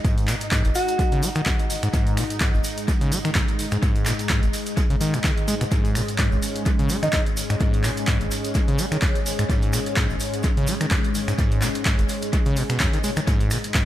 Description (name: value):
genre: acid house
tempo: 127 BPM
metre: 4/4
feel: swing 55% on 16ths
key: unclear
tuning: A4 = 440 Hz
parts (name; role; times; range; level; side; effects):
- lush unison pad; sustained chords; 0.0-13.8 s; G#2 to D#4; -29 LUFS; left 1 dB; chorus, phaser, sidechain pumping
- acid bass, saw; riff; 0.0-13.8 s; G#1 to G#3; -25 LUFS; equal; overdrive, cassette tape, sidechain pumping, tape echo
- electronic kick drum; drums; 0.0-13.8 s; none; -22 LUFS; equal; overdrive
- punchy analog drum machine; drums; 0.0-13.8 s; finger snaps, handclaps, hi-hat; -28 LUFS; equal; overdrive, dub echo
- maracas; percussion; 0.0-13.8 s; none; -34 LUFS; right 3 dB; dub echo
- breathy alto saxophone; melody; 0.8-1.2, 7.0-7.2 s; D#4 to F#4; -29 LUFS; equal; dub echo
room: light reverb, digital ambience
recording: echo-heavy mix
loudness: -20 LUFS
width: side -13 dB against mid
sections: 0.0-13.8 A section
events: none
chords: 0.0 G#5